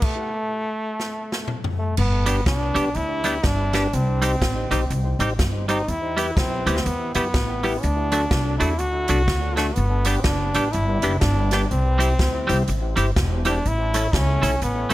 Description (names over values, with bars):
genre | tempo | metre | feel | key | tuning
ska | 123 BPM | 4/4 | swing 60% on 8ths | G major | A4 = 435 Hz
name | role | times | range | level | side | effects
brilliant trombone | melody | 0.0-14.9 s | A3 to F#4 | -26 LUFS | equal | tape echo, plate reverb
swinging big-band drum kit | drums | 0.0-14.9 s | crash cymbal, hi-hat, kick drum, snare drum, toms | -25 LUFS | equal | none
upright bass | bass | 2.0-14.9 s | E1 to F#2 | -23 LUFS | equal | none
clean electric guitar | accompaniment | 2.3-14.9 s | F#3 to A4 | -25 LUFS | right 3 dB | none
mellow tonewheel organ | stabs | 2.3-14.9 s | D4 to C#5 | -29 LUFS | left 2 dB | chorus vibrato, slow rotary speaker, tape echo, plate reverb
room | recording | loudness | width
light reverb | none | -19 LUFS | side -16 dB against mid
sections
0.0-2.0 A section; 2.0-14.9 B section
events
stop 0.0-2.0; drum fill 1.0-2.0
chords
0.0 N.C.; 2.0 G; 3.9 Cm; 5.9 Em; 7.8 D; 9.8 G; 11.7 C; 13.6 A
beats
| 0.02 0.51 1.00 1.49 | 1.98 2.46 2.95 3.44 | 3.93 4.42 4.90 5.39 | 5.88 6.36 6.85 7.34 | 7.83 8.31 8.80 9.28 | 9.77 10.25 10.74 11.22 | 11.71 12.19 12.68 13.16 | 13.64 14.13 14.61